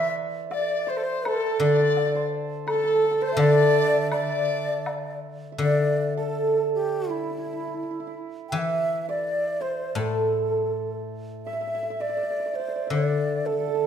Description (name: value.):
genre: chinese traditional, Chinese chamber ensemble.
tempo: 83 BPM.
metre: 2/4.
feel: rubato.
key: unclear.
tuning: A4 = 440 Hz.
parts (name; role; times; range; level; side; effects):
breathy xiao; melody; 0.0-13.9 s; E4 to G5; -28 LUFS; left 2 dB; none.
bright large dizi; second line; 0.0-5.2 s; A4 to E5; -29 LUFS; left 5 dB; none.
hammered dulcimer; second line; 0.0-13.9 s; E4 to E5; -27 LUFS; right 7 dB; none.
guzheng; accompaniment; 0.0-13.9 s; A2 to E3; -26 LUFS; left 4 dB; none.
woodblock; percussion; 0.5-5.0 s; none; -37 LUFS; left 2 dB; none.
room: moderate recital hall reverb, RT60 1.4 s.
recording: minimal, uncompressed stereo recording.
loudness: -22 LUFS.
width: side -8 dB against mid.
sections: 0.0-5.6 A section; 5.6-13.9 B section.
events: none.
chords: none.